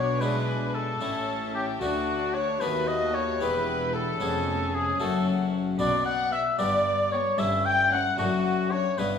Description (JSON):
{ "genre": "classical, baroque-style concerto movement with solo episodes", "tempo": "75 BPM (dotted quarters)", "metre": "6/8", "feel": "straight", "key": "D major", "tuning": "A4 = 441 Hz", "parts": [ { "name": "dark studio violin section", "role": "melody", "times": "0.0-8.9 s", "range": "F#5 to A5", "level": "-44 LUFS", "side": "left 4 dB", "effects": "none" }, { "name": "warm oboe", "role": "melody", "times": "0.0-9.2 s", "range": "F#4 to G5", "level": "-27 LUFS", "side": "left 2 dB", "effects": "none" }, { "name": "rich chamber violin section", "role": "second line", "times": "0.0-9.2 s", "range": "F#4 to G5", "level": "-32 LUFS", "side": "left 3 dB", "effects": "none" }, { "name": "harpsichord", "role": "accompaniment", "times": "0.0-9.2 s", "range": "D2 to G#4", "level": "-30 LUFS", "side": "left 3 dB", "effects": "none" }, { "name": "warm chamber viola section", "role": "accompaniment", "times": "0.0-8.9 s", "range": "B3 to F#4", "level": "-36 LUFS", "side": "equal", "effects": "none" }, { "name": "rich chamber cello section", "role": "bass", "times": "0.0-9.2 s", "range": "D2 to B2", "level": "-35 LUFS", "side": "equal", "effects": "none" }, { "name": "rich chamber double bass section", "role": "bass", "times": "0.0-9.2 s", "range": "E1 to D#2", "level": "-36 LUFS", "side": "right 2 dB", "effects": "none" } ], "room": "wet recital hall reverb, RT60 1.3 s", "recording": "studio reverb", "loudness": "-24 LUFS", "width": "side -7 dB against mid", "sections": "0.0-9.2 A section", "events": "none", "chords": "0.2 E7/B; 1.0 A; 1.8 D; 2.6 B7/D#; 3.4 Em; 4.2 C#7/E#; 5.0 F#m; 5.8 Bm; 6.6 G; 7.4 A7/G; 8.2 D/F#", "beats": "0.21 | 1.01 1.81 | 2.61 3.41 | 4.21 5.00 | 5.80 6.59 | 7.39 8.18 | 8.98" }